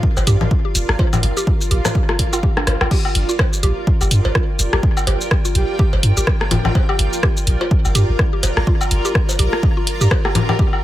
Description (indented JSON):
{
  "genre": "minimal techno",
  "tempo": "125 BPM",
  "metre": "4/4",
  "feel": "swing 58% on 16ths",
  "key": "G minor",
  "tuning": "A4 = 439 Hz",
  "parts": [
    { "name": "electronic kick drum", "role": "drums", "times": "0.0-10.7 s", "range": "none", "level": "-18 LUFS", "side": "equal", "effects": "none" },
    { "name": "granular cloud pad", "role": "texture", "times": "0.0-10.8 s", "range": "F4 to Bb5", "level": "-26 LUFS", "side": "right 1 dB", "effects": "built-in reverb, sidechain pumping" },
    { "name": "punchy sub bass", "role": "bass", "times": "0.2-10.1 s", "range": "F1 to G2", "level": "-17 LUFS", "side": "equal", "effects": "sidechain pumping" },
    { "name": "punchy analog drum machine", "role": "drums", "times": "0.2-10.5 s", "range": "crash cymbal, hi-hat, rim click, shaker", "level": "-21 LUFS", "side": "equal", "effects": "none" },
    { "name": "electronic cowbell, woodblock, congas and rim click", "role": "percussion", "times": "0.2-10.8 s", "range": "none", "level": "-22 LUFS", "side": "left 2 dB", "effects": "tape echo" },
    { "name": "mallet-like synth pluck", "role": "riff", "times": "0.3-10.6 s", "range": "D4 to G5", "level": "-27 LUFS", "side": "right 1 dB", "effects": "chorus, sidechain pumping, digital delay" },
    { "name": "breathy flute-like synth lead", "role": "melody", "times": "5.5-5.8 s", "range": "G4", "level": "-27 LUFS", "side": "right 3 dB", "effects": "ensemble chorus, tape echo" }
  ],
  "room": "digital ambience",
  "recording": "none",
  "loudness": "-14 LUFS",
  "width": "side -14 dB against mid",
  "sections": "0.0-2.9 A section; 2.9-10.8 B section",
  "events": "drum fill 2.6-2.9; drop 2.9-10.8",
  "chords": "0.0 Gm7"
}